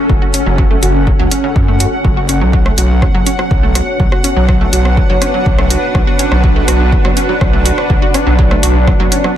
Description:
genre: melodic techno.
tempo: 123 BPM.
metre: 4/4.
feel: straight.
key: unclear.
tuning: A4 = 440 Hz.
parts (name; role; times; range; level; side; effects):
granular cloud pad; texture; 0.0-9.4 s; C#4 to F#5; -17 LUFS; equal; built-in reverb, sidechain pumping.
wide unison pluck; arpeggios; 0.1-9.3 s; C#3 to F#4; -19 LUFS; equal; vintage 12-bit sampler grit, sidechain pumping, tape echo.
gritty driven synth bass; bass; 0.1-9.1 s; F#1 to F#2; -14 LUFS; equal; sidechain pumping.
electronic kick drum; drums; 0.1-9.0 s; none; -14 LUFS; equal; none.
deep house drum kit; drums; 0.3-9.3 s; hi-hat, rim click; -18 LUFS; right 1 dB; overdrive, sidechain pumping on hats.
dark analog pad; sustained chords; 3.0-9.4 s; B3 to D5; -21 LUFS; right 1 dB; chorus, phaser, sidechain pumping.
room: little or no reverb.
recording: none.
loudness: -9 LUFS.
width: side -11 dB against mid.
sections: 0.0-9.4 A section.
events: none.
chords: 0.0 F#m; 2.5 Bm.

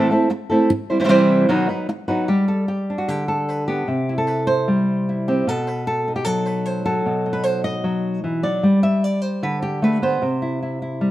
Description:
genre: flamenco.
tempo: 151 BPM.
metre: 4/4.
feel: straight.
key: unclear.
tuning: A4 = 441 Hz.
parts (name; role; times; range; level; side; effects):
flamenco guitar; solo; 0.0-11.1 s; A2 to E5; -18 LUFS; equal; none.
room: moderate stone room reverb, RT60 1.2 s.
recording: none.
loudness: -18 LUFS.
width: side -14 dB against mid.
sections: 0.0-2.3 A section; 2.3-11.1 B section.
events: none.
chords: 0.0 Am; 0.7 C; 1.5 B; 2.3 G; 3.9 C; 5.5 B; 8.6 G; 10.2 C.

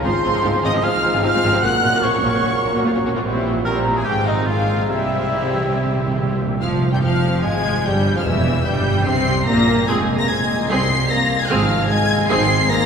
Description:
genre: classical, dramatic, fast romantic movement for symphony orchestra.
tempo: 148 BPM.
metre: 4/4.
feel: rubato.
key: F minor.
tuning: A4 = 440 Hz.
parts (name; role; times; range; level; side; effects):
dark symphonic violin section; melody; 0.0-12.9 s; Eb5 to C7; -23 LUFS; left 2 dB; none.
bright oboe; second line; 0.0-6.4 s; Eb4 to Gb5; -26 LUFS; right 2 dB; none.
mellow small flute group; second line; 0.0-6.4 s; Eb5 to Gb6; -27 LUFS; equal; none.
rich symphonic violin section; second line; 0.0-12.9 s; C4 to C6; -28 LUFS; left 2 dB; none.
mellow French horn section; sustained chords; 0.0-12.9 s; E3 to Bb4; -24 LUFS; left 2 dB; none.
mellow trombone section; sustained chords; 0.0-6.4 s; Ab2 to Ab3; -29 LUFS; right 2 dB; none.
rich symphonic cello section; bass; 0.0-12.6 s; C2 to E3; -25 LUFS; right 2 dB; none.
warm studio double bass section; bass; 0.0-12.6 s; E1 to C2; -23 LUFS; right 2 dB; none.
clear symphonic viola section; accompaniment; 0.1-12.5 s; E3 to Ab4; -24 LUFS; right 1 dB; none.
timpani; percussion; 4.9-8.8 s; F2 to C3; -29 LUFS; right 2 dB; none.
room: wet cathedral reverb, RT60 6.7 s.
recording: recorded in a church or concert hall.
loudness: -16 LUFS.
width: side -6 dB against mid.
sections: 0.0-6.6 A section; 6.6-12.9 B section.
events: timpani fill 4.9-6.6.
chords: 0.1 Fm/Ab; 1.6 Gb/Bb; 3.2 C7/Bb; 4.1 Fm/Ab; 4.9 C; 6.6 Fm; 8.3 C7/E; 9.9 Fm; 11.5 Fm/Ab.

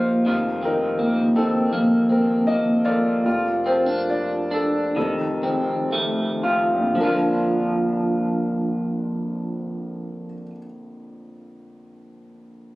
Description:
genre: acoustic folk-pop ballad.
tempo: 55-84 BPM.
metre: 4/4.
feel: straight.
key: Bb major.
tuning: A4 = 440 Hz.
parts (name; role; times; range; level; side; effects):
dark grand piano; melody; 0.0-12.8 s; F1 to Eb5; -24 LUFS; left 1 dB; none.
electric guitar through a small old amp; arpeggios; 0.0-10.6 s; Eb3 to F4; -22 LUFS; equal; harmonic tremolo.
room: wet small room reverb, RT60 0.6 s.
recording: recorded on a phone in the room, studio ambience.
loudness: -19 LUFS.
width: side -19 dB against mid.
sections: 0.0-7.0 A section; 7.0-11.3 B section.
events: slowing down 0.3-7.0.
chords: 0.3 F7sus4; 3.3 Bbmaj7/F; 5.0 F7; 7.0 Bb.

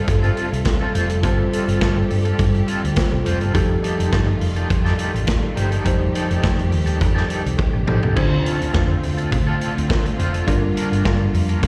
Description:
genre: disco.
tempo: 104 BPM.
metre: 4/4.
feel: straight.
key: unclear.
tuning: A4 = 439 Hz.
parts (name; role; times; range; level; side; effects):
electric guitar at the edge of break-up; accompaniment; 0.0-11.7 s; C4 to C5; -30 LUFS; equal; tremolo, slapback echo.
mellow tine electric piano; accompaniment; 0.0-11.7 s; D3 to C5; -26 LUFS; equal; slapback echo.
clear studio string section; sustained chords; 0.0-11.7 s; C3 to A4; -31 LUFS; equal; none.
hollow-body short-scale fingered electric bass; bass; 0.1-11.7 s; F1 to D3; -23 LUFS; equal; none.
vintage drum kit; drums; 0.1-11.7 s; crash cymbal, hi-hat, kick drum, snare drum, toms; -25 LUFS; equal; none.
room: little or no reverb.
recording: live gig heard through the venue's PA, recital hall reverb.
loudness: -19 LUFS.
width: mono.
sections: 0.0-8.2 A section; 8.2-11.7 B section.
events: drum fill 7.6-8.2.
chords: 0.0 G9sus4; 3.5 F9; 8.2 Dm7; 10.5 Gm7.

